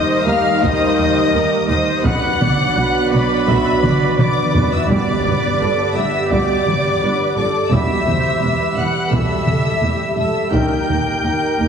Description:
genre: cinematic, epic orchestral film score.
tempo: 85 BPM.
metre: 4/4.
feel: straight.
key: G major.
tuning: A4 = 440 Hz.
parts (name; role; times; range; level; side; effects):
warm symphonic violin section; melody; 0.0-11.7 s; B5 to G6; -26 LUFS; left 3 dB; none.
warm symphonic violin section; second line; 0.0-11.7 s; B4 to G5; -26 LUFS; left 4 dB; none.
warm symphonic viola section; accompaniment; 0.0-11.7 s; G4 to E5; -25 LUFS; right 1 dB; none.
bright trombone section; sustained chords; 0.0-10.8 s; B2 to G3; -25 LUFS; right 6 dB; none.
warm French horn section; sustained chords; 0.0-10.8 s; Bb3 to G4; -26 LUFS; left 2 dB; none.
warm woodwind section; sustained chords; 0.0-11.7 s; G3 to B5; -23 LUFS; equal; none.
dark trumpet section; stabs; 0.0-11.7 s; B4 to G5; -23 LUFS; right 2 dB; none.
bright small flute group; second line; 0.3-11.7 s; B4 to G5; -26 LUFS; left 4 dB; none.
rich symphonic double bass section; bass; 0.3-11.7 s; E1 to Eb2; -24 LUFS; right 2 dB; none.
warm symphonic cello section; bass; 0.3-11.7 s; Eb2 to B2; -24 LUFS; right 2 dB; none.
taiko ensemble; drums; 0.6-11.2 s; none; -22 LUFS; left 1 dB; none.
timpani; percussion; 4.9-5.9 s; G2; -27 LUFS; equal; none.
room: wet concert hall reverb, RT60 2.1 s.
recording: heavily compressed radio sound, multiband compression, small room ambience.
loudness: -14 LUFS.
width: side -7 dB against mid.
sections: 0.0-11.7 A section.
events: drum fill 3.8-4.9.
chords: 0.0 Eb; 2.1 Bm; 4.9 G; 7.7 Em; 10.5 Eb.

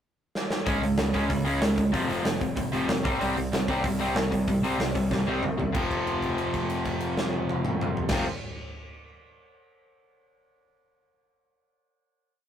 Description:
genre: punk rock.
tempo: 189 BPM.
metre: 4/4.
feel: straight.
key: unclear.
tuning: A4 = 440 Hz.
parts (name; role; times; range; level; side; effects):
big rock drum kit; drums; 0.4-8.2 s; crash cymbal, hi-hat, kick drum, snare drum, toms; -29 LUFS; equal; none.
cranked stack guitar; riff; 0.7-8.3 s; F2 to Db4; -29 LUFS; right 4 dB; overdrive.
crunchy overdriven guitar; riff; 0.7-8.3 s; F2 to Db4; -30 LUFS; left 5 dB; none.
modern bright picked electric bass; bass; 0.7-8.2 s; F1 to Db2; -33 LUFS; equal; none.
room: light reverb.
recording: rough rehearsal-room recording, tube saturation.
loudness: -24 LUFS.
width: side -9 dB against mid.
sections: 0.0-0.7 pickup bar; 0.7-5.7 verse; 5.7-8.3 final chord.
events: drum fill 0.3-0.7, 5.1-5.7; held note 5.7-8.1.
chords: 0.0 N.C.; 0.7 Db5; 1.9 F5; 3.0 C5; 5.7 F5.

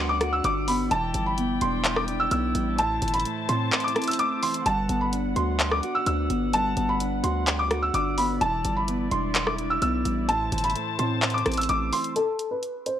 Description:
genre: hip hop, trap.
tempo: 128 BPM.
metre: 4/4.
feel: half-time.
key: unclear.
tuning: A4 = 438 Hz.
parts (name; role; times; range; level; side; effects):
felt-muted upright piano; melody; 0.0-13.0 s; A4 to E6; -26 LUFS; equal; low-pass filter.
mellow electric guitar; accompaniment; 0.0-12.2 s; A2 to G4; -29 LUFS; equal; none.
warm chamber string section; sustained chords; 0.0-12.1 s; B3 to A5; -34 LUFS; left 2 dB; none.
hard-hitting 808-style bass; bass; 0.0-11.9 s; E1 to A2; -29 LUFS; equal; none.
trap drum kit; drums; 0.2-13.0 s; handclaps, hi-hat, rim click; -27 LUFS; equal; none.
room: digital ambience.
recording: worn, warbling old tape, cassette tape, warbly pitch drift.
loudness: -22 LUFS.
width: side -10 dB against mid.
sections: 0.0-12.2 A section.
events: kick muted 3.7-4.7; break 12.2-13.0.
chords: 0.0 Gmaj7; 0.9 Em7; 2.8 Am; 4.7 Gmaj7; 8.4 Em7; 10.3 Am; 12.2 N.C..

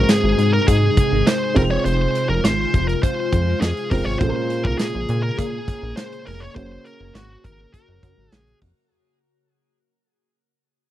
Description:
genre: 1980s-style pop.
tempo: 102 BPM.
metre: 4/4.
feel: straight.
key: unclear.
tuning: A4 = 439 Hz.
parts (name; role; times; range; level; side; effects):
bluesy overdriven lead guitar; melody; 0.0-8.6 s; Gb4 to Db5; -24 LUFS; equal; distortion, tape echo.
dark baby grand piano; accompaniment; 0.0-8.9 s; Ab2 to Db5; -25 LUFS; right 1 dB; none.
ethereal airy pad; sustained chords; 0.0-8.9 s; C3 to Ab4; -26 LUFS; left 1 dB; ensemble chorus, built-in reverb.
chorused synth bass; bass; 0.0-8.7 s; F1 to Bb2; -21 LUFS; equal; none.
big rock drum kit; drums; 0.1-8.8 s; crash cymbal, hi-hat, kick drum, snare drum, tambourine; -20 LUFS; equal; none.
room: little or no reverb.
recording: dry, close 1970s-style studio recording.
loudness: -17 LUFS.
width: side -13 dB against mid.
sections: 0.0-8.9 A section.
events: fade-out 0.0-8.9.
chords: 0.0 Ab; 1.6 Fm; 4.2 Bbm7; 6.6 Gb.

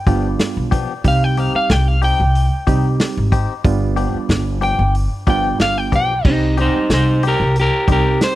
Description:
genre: straight-eighth soul blues.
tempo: 92 BPM.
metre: 4/4.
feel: straight.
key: C harmonic minor.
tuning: A4 = 438 Hz.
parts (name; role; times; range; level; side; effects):
electric guitar at the edge of break-up; melody; 0.0-8.4 s; Eb4 to G5; -18 LUFS; equal; none.
barky reed electric piano; accompaniment; 0.1-8.4 s; G3 to G4; -22 LUFS; right 7 dB; overdrive.
direct-recorded clean electric guitar; stabs; 0.1-8.1 s; F3 to G4; -26 LUFS; left 8 dB; spring reverb.
upright bass; bass; 0.1-8.2 s; G1 to C2; -18 LUFS; equal; none.
warm soul drum kit; drums; 0.1-8.4 s; crash cymbal, hi-hat, kick drum, snare drum; -17 LUFS; equal; none.
room: studio reverb.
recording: dry, close 1970s-style studio recording.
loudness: -14 LUFS.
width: side -15 dB against mid.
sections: 0.0-6.3 A section; 6.3-8.4 B section.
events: clean electric guitar solo 0.0-6.3.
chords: 0.0 G7; 1.1 Cm; 3.7 G7; 6.3 Cm.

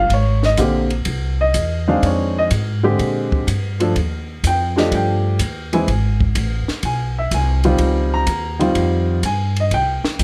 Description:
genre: jazz piano trio.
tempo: 125 BPM.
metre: 4/4.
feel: swing 69% on 8ths.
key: unclear.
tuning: A4 = 440 Hz.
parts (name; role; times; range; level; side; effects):
warm baby grand piano; melody; 0.0-10.2 s; D3 to Bb5; -21 LUFS; equal; none.
upright bass; bass; 0.0-10.2 s; Ab1 to Bb2; -22 LUFS; equal; none.
compact cocktail drum kit; drums; 0.1-10.2 s; hi-hat, kick drum, ride cymbal, snare drum; -28 LUFS; equal; none.
room: little or no reverb.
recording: none.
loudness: -18 LUFS.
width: mono.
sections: 0.0-10.2 A section.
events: none.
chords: 0.1 Abadd9(#11); 2.0 Fm7; 3.0 Bb13; 3.9 Ebmaj9#11; 5.9 Ab; 7.8 Dbmaj9#11; 9.7 C5.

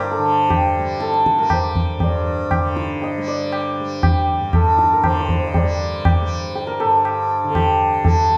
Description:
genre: indian classical, Hindustani.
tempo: 119 BPM.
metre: 7/4.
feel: straight.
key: G raga darbari.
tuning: A4 = 442 Hz.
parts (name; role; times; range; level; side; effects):
santur; melody; 0.0-8.4 s; G4 to F5; -21 LUFS; equal; none.
tanpura; drone; 0.0-8.4 s; G2 to G3; -28 LUFS; equal; none.
tabla; percussion; 0.0-8.2 s; none; -23 LUFS; equal; none.
room: wet recital hall reverb, RT60 1.4 s.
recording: dark, warm production.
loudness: -18 LUFS.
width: mono.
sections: 0.0-8.4 A section.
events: none.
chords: none.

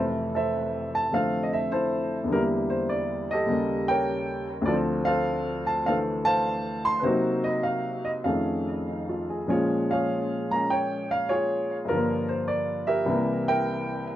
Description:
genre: solo jazz.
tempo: 101 BPM.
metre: 4/4.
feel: swing 68% on 8ths, rubato.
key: F major.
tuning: A4 = 440 Hz.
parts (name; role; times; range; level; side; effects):
warm upright piano; solo; 0.0-14.2 s; C2 to C6; -24 LUFS; equal; tape echo.
room: little or no reverb.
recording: dry, close 1970s-style studio recording.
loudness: -24 LUFS.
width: side -13 dB against mid.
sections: 0.0-14.2 A section.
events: none.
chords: 0.0 Fmaj7; 2.3 Em7b5; 3.5 Eb7#11; 4.7 Dm7; 7.1 Cm7b5; 8.3 F7alt; 9.5 Bbm7; 11.9 Gm7; 13.1 C7.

